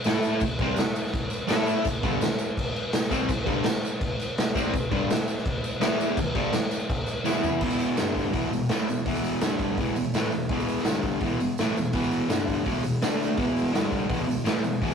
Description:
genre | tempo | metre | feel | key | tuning
garage rock duo or trio | 167 BPM | 4/4 | straight | E minor | A4 = 439 Hz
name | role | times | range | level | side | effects
tambourine | percussion | 0.0-14.9 s | none | -44 LUFS | right 4 dB | none
fuzz guitar | riff | 0.1-14.9 s | E2 to A4 | -26 LUFS | equal | distortion
raw garage drum kit | drums | 0.1-14.9 s | crash cymbal, hi-hat, kick drum, snare drum, toms | -26 LUFS | equal | none
room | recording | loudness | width
light reverb | rough rehearsal-room recording, tube saturation | -23 LUFS | side -6 dB against mid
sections
0.0-7.6 A section; 7.6-14.9 B section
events
drum fill 7.3-7.6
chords
0.1 A5; 0.6 C5; 1.5 A5; 2.0 G5; 5.8 E5; 6.4 G5; 7.3 E5; 8.0 G5; 8.3 E5; 9.4 G5; 9.8 E5; 10.9 G5; 11.2 E5; 12.3 G5; 12.7 E5; 13.0 D5; 13.4 E5; 13.7 G5; 14.1 E5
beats
0.06 | 0.42 0.78 1.14 1.50 | 1.86 2.21 2.58 2.94 | 3.29 3.65 4.01 4.38 | 4.74 5.10 5.46 5.82 | 6.18 6.54 6.90 7.26 | 7.62 7.98 8.34 8.70 | 9.06 9.42 9.78 10.14 | 10.50 10.86 11.21 11.57 | 11.93 12.29 12.65 13.01 | 13.37 13.73 14.09 14.45 | 14.81

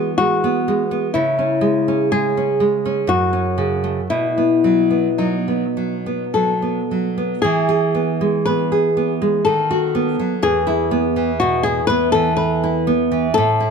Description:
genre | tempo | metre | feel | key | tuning
romantic duo for nylon-string guitar and classical guitar | 50-63 BPM | 3/4 | rubato | E major | A4 = 437 Hz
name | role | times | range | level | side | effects
flamenco guitar | melody | 0.0-13.7 s | D#4 to B4 | -19 LUFS | left 5 dB | none
nylon-string guitar | accompaniment | 0.0-13.7 s | E2 to G#4 | -18 LUFS | right 3 dB | none
room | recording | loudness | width
light reverb | close, detailed microphones | -16 LUFS | side -5 dB against mid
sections
0.0-7.4 A section; 7.4-13.7 A section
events
none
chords
0.0 E; 1.1 C#m; 3.1 F#m; 4.1 B; 7.4 E; 9.5 B7/D#; 10.4 E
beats
0.17 | 1.14 2.11 3.08 | 4.10 5.18 6.35 | 7.44 8.46 9.46 | 10.43 11.40 12.36 | 13.34

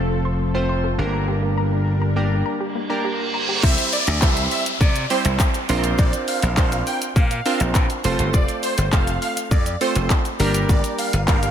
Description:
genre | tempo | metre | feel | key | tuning
dance-pop | 102 BPM | 4/4 | straight | F major | A4 = 442 Hz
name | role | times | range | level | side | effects
chorused retro synth keys | accompaniment | 0.0-11.5 s | G3 to C5 | -25 LUFS | right 3 dB | none
string machine, cellos | sustained chords | 0.0-3.6 s | F3 to Bb4 | -29 LUFS | left 2 dB | ensemble chorus, sidechain pumping
hollow square pluck | arpeggios | 0.0-3.6 s | Bb3 to C6 | -30 LUFS | left 2 dB | chorus, sidechain pumping, ping-pong delay
slap bass | bass | 0.0-11.5 s | F1 to C3 | -22 LUFS | equal | sidechain pumping
reverse cymbal and downlifter | sound effects | 2.7-8.3 s | none | -26 LUFS | equal | none
supersaw chords | melody | 3.6-11.5 s | C5 to G5 | -27 LUFS | equal | none
pop drum kit | drums | 3.6-11.5 s | crash cymbal, handclaps, hi-hat, kick drum, shaker | -20 LUFS | equal | none
room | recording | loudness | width
light reverb, digital ambience | none | -18 LUFS | side -9 dB against mid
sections
0.0-3.6 A section; 3.6-11.5 B section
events
break 2.5-3.6; reverse cymbal 2.7-3.6; drop 3.6-11.5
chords
0.0 F; 1.0 Gm; 3.6 C; 5.7 Bbadd9; 8.0 F; 10.4 Gm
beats
0.10 0.69 | 1.28 1.87 2.46 3.04 | 3.63 4.22 4.81 5.40 | 5.99 6.57 7.16 7.75 | 8.34 8.93 9.52 10.10 | 10.69 11.28

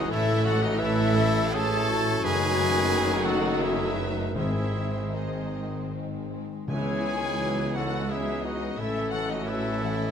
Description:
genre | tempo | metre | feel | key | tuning
classical | 76-90 BPM | 3/4 | rubato | C# minor | A4 = 439 Hz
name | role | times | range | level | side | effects
warm studio violin section | melody | 0.0-10.1 s | D#5 to A5 | -32 LUFS | left 3 dB | none
concert flute | second line | 0.0-10.1 s | F#4 to C#5 | -34 LUFS | left 2 dB | none
mellow clarinet | second line | 0.0-10.1 s | E4 to B#4 | -34 LUFS | left 2 dB | none
warm studio violin section | second line | 0.0-10.1 s | G#3 to E4 | -37 LUFS | left 1 dB | none
warm studio viola section | accompaniment | 0.0-10.1 s | D#3 to G#3 | -34 LUFS | left 1 dB | none
mellow French horn section | sustained chords | 0.0-10.1 s | G#3 to E4 | -35 LUFS | left 5 dB | none
concert harp | arpeggios | 0.0-10.1 s | F#2 to G#4 | -37 LUFS | left 11 dB | none
clear trumpet | stabs | 0.0-10.1 s | D#4 to A4 | -33 LUFS | right 3 dB | none
mellow tuba | bass | 0.0-10.1 s | F#1 to C#2 | -35 LUFS | right 5 dB | none
rich studio cello section | bass | 0.0-10.1 s | C#2 to A2 | -33 LUFS | right 2 dB | none
warm studio double bass section | bass | 0.0-10.1 s | F#1 to C#2 | -34 LUFS | right 4 dB | none
timpani | percussion | 4.4-7.7 s | G#2 to C#3 | -34 LUFS | left 1 dB | none
room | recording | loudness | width
moderate recital hall reverb, RT60 1.4 s | close, detailed microphones | -24 LUFS | side -8 dB against mid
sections
0.0-10.1 A section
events
none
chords
0.1 A; 2.2 D#dim/F#; 4.3 G#; 6.7 C#m; 8.8 A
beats
| 0.11 0.80 1.55 | 2.24 2.91 3.60 | 4.35 5.13 5.92 | 6.69 7.41 8.10 | 8.78 9.46

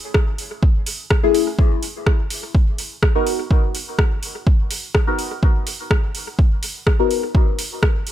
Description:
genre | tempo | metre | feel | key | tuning
dub techno | 125 BPM | 4/4 | straight | unclear | A4 = 444 Hz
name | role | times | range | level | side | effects
deep house drum kit | drums | 0.1-8.1 s | hi-hat, rim click | -24 LUFS | equal | overdrive, studio reverb, dub echo
electronic kick drum | drums | 0.1-7.9 s | none | -16 LUFS | equal | overdrive, studio reverb
deep mellow chord stab | stabs | 1.2-7.3 s | A3 to A#4 | -22 LUFS | left 4 dB | chorus, phaser, sidechain pumping, dub echo
room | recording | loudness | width
little or no reverb | none | -17 LUFS | side -12 dB against mid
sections
0.0-8.1 A section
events
none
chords
0.0 Amaj7; 1.6 Bmaj7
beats
0.15 0.63 1.11 | 1.59 2.07 2.55 3.03 | 3.51 3.99 4.47 4.95 | 5.43 5.91 6.39 6.87 | 7.35 7.83

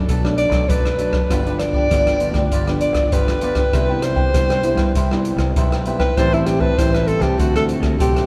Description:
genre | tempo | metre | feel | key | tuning
samba and choro | 98 BPM | 4/4 | straight | G major | A4 = 440 Hz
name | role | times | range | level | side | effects
breathy alto saxophone | melody | 0.0-8.3 s | E4 to D5 | -23 LUFS | equal | none
cavaquinho | accompaniment | 0.0-8.3 s | D4 to A5 | -31 LUFS | equal | none
nylon-string guitar | accompaniment | 0.0-8.3 s | F#2 to F#4 | -26 LUFS | equal | none
growling fingered electric bass | bass | 0.0-8.3 s | G1 to G2 | -26 LUFS | equal | overdrive
open jazz drum kit | drums | 0.1-8.3 s | hi-hat, kick drum, rim click | -22 LUFS | equal | none
room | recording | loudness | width
wet cathedral reverb, RT60 4.5 s | recorded in a church or concert hall | -18 LUFS | mono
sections
0.0-8.3 A section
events
alto saxophone solo 0.0-8.3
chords
0.0 Bm7; 1.3 G7; 3.7 Cmaj7; 6.2 Am7; 7.4 D7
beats
0.09 0.70 | 1.30 1.91 2.52 3.13 | 3.74 4.35 4.96 5.57 | 6.18 6.79 7.40 8.01

